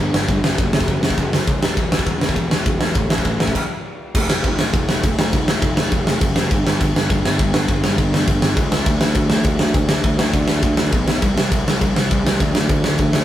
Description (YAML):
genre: punk rock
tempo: 204 BPM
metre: 4/4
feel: straight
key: unclear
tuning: A4 = 442 Hz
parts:
  - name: fuzz picked electric bass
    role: bass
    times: 0.0-13.2 s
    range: E1 to D2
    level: -20 LUFS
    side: equal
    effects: overdrive
  - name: big rock drum kit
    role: drums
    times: 0.1-13.2 s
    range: crash cymbal, kick drum, ride cymbal, snare drum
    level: -17 LUFS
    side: equal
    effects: none
room: light reverb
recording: rough rehearsal-room recording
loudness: -15 LUFS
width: side -12 dB against mid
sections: 0.0-4.1 A section; 4.1-13.2 B section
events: stop 3.6-4.1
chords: none